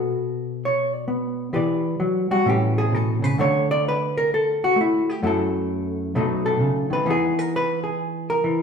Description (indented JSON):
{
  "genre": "solo jazz",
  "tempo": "130 BPM",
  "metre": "4/4",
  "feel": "swing 66% on 8ths",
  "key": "B minor",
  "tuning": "A4 = 440 Hz",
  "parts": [
    { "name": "hollow-body jazz guitar", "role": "solo", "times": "0.0-8.6 s", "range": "F#2 to D5", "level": "-20 LUFS", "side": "equal", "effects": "none" }
  ],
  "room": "wet stone room reverb, RT60 1.2 s",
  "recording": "band playing live in one room",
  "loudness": "-20 LUFS",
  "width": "side -6 dB against mid",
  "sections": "0.0-8.6 A section",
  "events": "hollow-body jazz guitar solo 0.0-8.6",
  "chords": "0.0 B5; 1.5 Em7; 2.5 A; 3.4 D5; 5.2 F#m7; 6.1 B7; 7.1 Emaj7"
}